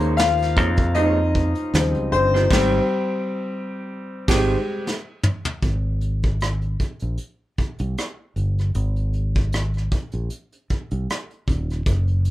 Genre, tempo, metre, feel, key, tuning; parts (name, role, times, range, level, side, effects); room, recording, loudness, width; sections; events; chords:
R&B, neo-soul; 77 BPM; 4/4; swing 56% on 16ths; Ab major; A4 = 436 Hz
electric guitar through a small old amp; second line; 0.0-4.5 s; Bb3 to Db5; -25 LUFS; right 3 dB
warm baby grand piano; accompaniment; 0.0-4.9 s; Db3 to F5; -21 LUFS; left 2 dB
fingered electric bass; bass; 0.0-12.3 s; Eb1 to F2; -22 LUFS; equal
vintage brush drum kit; drums; 0.0-12.3 s; crash cymbal, hi-hat, kick drum, rim click, snare drum, toms; -23 LUFS; equal
light reverb; band playing live in one room; -20 LUFS; side -15 dB against mid
0.0-5.6 A section; 5.6-12.3 B section
grand piano solo 0.0-5.6; band accent 2.5-5.6; drum fill 4.8-5.6
0.0 Eb7sus4; 1.7 Eb13; 2.5 Abmaj7; 4.8 N.C.